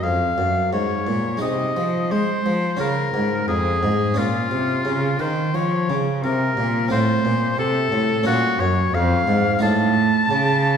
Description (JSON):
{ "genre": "classical, baroque-style sonata movement with continuo", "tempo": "88 BPM", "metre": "4/4", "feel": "rubato", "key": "unclear", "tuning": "A4 = 439 Hz", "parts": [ { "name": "clear oboe", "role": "melody", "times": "0.0-10.8 s", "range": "F4 to A5", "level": "-22 LUFS", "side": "left 2 dB", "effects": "none" }, { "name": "harpsichord", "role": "accompaniment", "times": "0.0-10.8 s", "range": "F2 to F4", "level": "-25 LUFS", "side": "equal", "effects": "none" }, { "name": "rich cello", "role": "bass", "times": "0.0-10.8 s", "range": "F2 to Ab3", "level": "-22 LUFS", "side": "right 1 dB", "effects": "none" } ], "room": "wet recital hall reverb, RT60 1.7 s", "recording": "heard from further back in the room", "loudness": "-18 LUFS", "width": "side -7 dB against mid", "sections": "0.0-10.8 A section", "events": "none", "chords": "0.0 Db; 1.4 Ab/C; 2.8 Db; 4.2 Bbm; 6.9 F/A; 8.3 Bbm; 9.6 F7/A" }